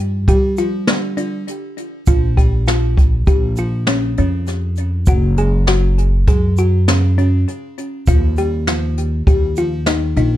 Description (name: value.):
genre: progressive instrumental, band music in an uneven meter.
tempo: 100 BPM.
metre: 5/4.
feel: straight.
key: unclear.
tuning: A4 = 438 Hz.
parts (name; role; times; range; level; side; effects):
thumb-piano-like synth pluck; arpeggios; 0.0-10.4 s; C#4 to G#4; -21 LUFS; left 1 dB; chorus, phaser, digital delay.
upright bass; bass; 0.0-10.4 s; F#1 to G3; -16 LUFS; equal; none.
jazz brush drum kit; drums; 0.3-10.3 s; hi-hat, kick drum, snare drum; -16 LUFS; equal; none.
egg shaker; percussion; 0.6-9.8 s; none; -38 LUFS; right 9 dB; none.
room: light reverb.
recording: dark, warm production.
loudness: -14 LUFS.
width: side -13 dB against mid.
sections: 0.0-10.4 A section.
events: none.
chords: 0.0 G5; 2.1 A#m; 5.1 F#5; 8.1 D#.